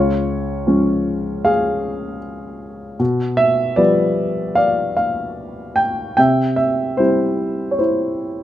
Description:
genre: classical, lyrical solo piano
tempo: 76 BPM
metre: 4/4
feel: rubato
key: unclear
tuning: A4 = 440 Hz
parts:
  - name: dark grand piano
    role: solo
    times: 0.0-8.4 s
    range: Db2 to G5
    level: -16 LUFS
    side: equal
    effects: none
room: light reverb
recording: close, detailed microphones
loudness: -16 LUFS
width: side -12 dB against mid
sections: 0.0-8.4 A section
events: none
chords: 0.0 Db; 3.0 G7/B; 6.2 C

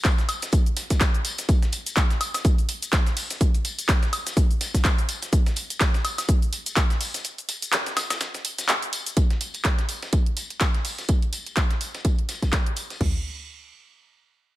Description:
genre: house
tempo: 125 BPM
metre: 4/4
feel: swing 57% on 16ths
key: none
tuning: none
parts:
  - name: dusty soul sampler-style drum kit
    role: drums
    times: 0.0-13.0 s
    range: hi-hat, snare drum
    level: -35 LUFS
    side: equal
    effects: high-pass filter on hats, high-pass filter on snare, high-pass filter on room
  - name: house drum kit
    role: drums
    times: 0.0-13.1 s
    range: crash cymbal, kick drum, toms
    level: -21 LUFS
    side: equal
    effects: overdrive
  - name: house drum kit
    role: drums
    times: 0.0-13.0 s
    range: handclaps, hi-hat, shaker, woodblock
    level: -26 LUFS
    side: equal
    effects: overdrive
  - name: tambourine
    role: percussion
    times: 0.1-13.0 s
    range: none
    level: -35 LUFS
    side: left 4 dB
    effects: none
room: digital ambience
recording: none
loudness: -21 LUFS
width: side -16 dB against mid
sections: 0.0-9.2 A section; 9.2-13.0 B section; 13.0-14.6 C section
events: drop 0.0-9.2; break 7.2-9.2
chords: none

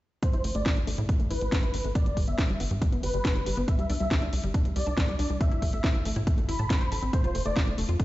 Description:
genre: uplifting trance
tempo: 139 BPM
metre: 4/4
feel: straight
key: A minor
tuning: A4 = 440 Hz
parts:
  - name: supersaw chords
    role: melody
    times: 0.2-7.7 s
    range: B4 to B5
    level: -34 LUFS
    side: equal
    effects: sidechain pumping, low-pass filter, ping-pong delay
  - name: wide unison pluck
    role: arpeggios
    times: 0.2-8.0 s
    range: G3 to A5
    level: -35 LUFS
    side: left 2 dB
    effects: sidechain pumping, ping-pong delay
  - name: electronic kick drum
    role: drums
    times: 0.2-8.0 s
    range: none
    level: -25 LUFS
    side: equal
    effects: overdrive
  - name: house drum kit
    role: drums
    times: 0.2-8.0 s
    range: hi-hat, snare drum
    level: -34 LUFS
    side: equal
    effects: overdrive
  - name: tight sequencer bass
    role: bass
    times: 0.3-8.0 s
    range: F1 to A2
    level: -30 LUFS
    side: equal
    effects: sidechain pumping
room: light reverb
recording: played on a big sound system in a bare room, stone room reverb, nothing above 7.8 kHz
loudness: -24 LUFS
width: side -16 dB against mid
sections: 0.2-8.0 A section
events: filter sweep on synth pluck 0.2-8.0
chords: 0.2 A5; 2.0 G; 3.7 Csus2; 5.4 A5; 7.1 F

